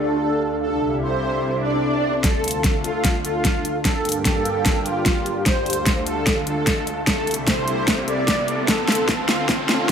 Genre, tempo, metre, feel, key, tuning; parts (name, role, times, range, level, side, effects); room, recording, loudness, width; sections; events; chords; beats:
heavy wobble dubstep; 149 BPM; 4/4; swing 55% on 16ths, half-time; D minor; A4 = 441 Hz
soft supersaw; melody; 0.0-9.9 s; F4 to D5; -24 LUFS; right 1 dB; dub echo
lush unison pad; sustained chords; 0.0-9.9 s; C2 to G4; -28 LUFS; equal; chorus, sidechain pumping
granular cloud pad; texture; 0.0-9.9 s; C4 to A5; -27 LUFS; left 1 dB; built-in reverb, sidechain pumping
swell and riser; sound effects; 1.6-9.9 s; -29 LUFS; equal
dubstep drum kit; drums; 2.2-9.9 s; hi-hat, snare drum; -22 LUFS; equal; overdrive, studio reverb
electronic kick drum; drums; 2.2-9.9 s; -23 LUFS; equal; overdrive, studio reverb
light reverb; high-pass filter; -18 LUFS; side -7 dB against mid
0.0-2.2 A section; 2.2-9.9 B section
swell 1.6-2.2; build-up 2.2-9.9; drum fill 2.2-9.9; riser 2.2-9.9
0.0 Dm; 0.6 Am7/C; 2.2 Dm; 3.9 Gm; 5.5 Dm; 7.1 Am7/C; 8.7 Dm
0.23 | 0.63 1.03 1.43 1.84 | 2.24 2.64 3.04 3.45 | 3.85 4.25 4.66 5.06 | 5.46 5.86 6.27 6.67 | 7.07 7.47 7.88 8.28 | 8.68 9.09 9.49 9.89